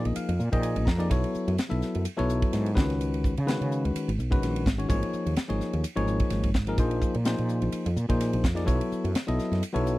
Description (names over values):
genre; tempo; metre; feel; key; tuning
electric jazz fusion; 127 BPM; 4/4; swing 55% on 16ths; unclear; A4 = 441 Hz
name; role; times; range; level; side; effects
barky tine electric piano; accompaniment; 0.0-10.0 s; D#3 to A#5; -29 LUFS; left 2 dB; none
woody fretless electric bass; bass; 0.0-10.0 s; G#1 to C#3; -27 LUFS; equal; none
crisp fusion drum kit; drums; 0.1-10.0 s; hi-hat, kick drum, ride cymbal, snare drum; -29 LUFS; equal; none
room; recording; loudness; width
little or no reverb; dry, close 1970s-style studio recording; -24 LUFS; side -18 dB against mid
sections
0.0-10.0 A section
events
tine electric piano fill 0.0-1.1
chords
0.0 A#7sus4; 1.1 B9sus4; 2.8 C#9sus4; 4.9 G#sus24; 6.8 A#9sus4; 8.7 B9sus4